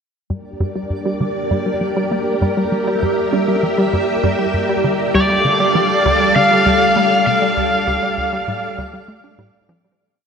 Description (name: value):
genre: ambient, sequencer-driven space music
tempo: 99 BPM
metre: 4/4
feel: straight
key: G dorian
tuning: A4 = 438 Hz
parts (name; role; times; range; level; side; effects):
- string machine, full ensemble; sustained chords; 0.3-10.0 s; G3 to F5; -18 LUFS; left 1 dB; ensemble chorus, shimmer reverb
- wide unison pluck; arpeggios; 0.3-9.9 s; G3 to D4; -22 LUFS; right 1 dB; auto-pan, shimmer reverb, analog delay
- tight sequencer bass; riff; 0.3-9.9 s; D2 to D4; -24 LUFS; equal; cassette tape, analog delay
- twinkling granular texture; texture; 1.2-10.0 s; D5; -30 LUFS; right 5 dB; built-in reverb, shimmer reverb
- biting lead guitar; melody; 5.2-9.3 s; D5 to F5; -15 LUFS; equal; overdrive, shimmer reverb, analog delay
room: wet huge ambient reverb, RT60 7.9 s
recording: none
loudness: -14 LUFS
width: side -6 dB against mid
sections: 0.3-10.0 A section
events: fade-in on synth texture 0.3-10.0; filter sweep on analog synth bass 0.3-10.0; fade-out 6.8-10.0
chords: 0.3 Gm; 5.1 Dm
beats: | 0.30 0.90 1.51 2.12 | 2.72 3.33 3.93 4.54 | 5.15 5.75 6.36 6.96 | 7.57 8.18 8.78 9.39